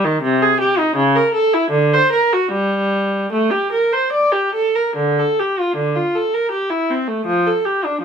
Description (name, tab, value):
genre	classical, baroque-style suite movement for unaccompanied viola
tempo	70-82 BPM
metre	3/4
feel	rubato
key	G minor, D minor from 5.0 s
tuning	A4 = 441 Hz
part	rich viola	solo	0.0-8.0 s	C3 to D5	-15 LUFS	right 1 dB	none
room	light reverb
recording	minimal, uncompressed stereo recording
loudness	-15 LUFS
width	side -7 dB against mid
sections	0.0-5.0 A section; 5.0-8.0 A section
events	none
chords	none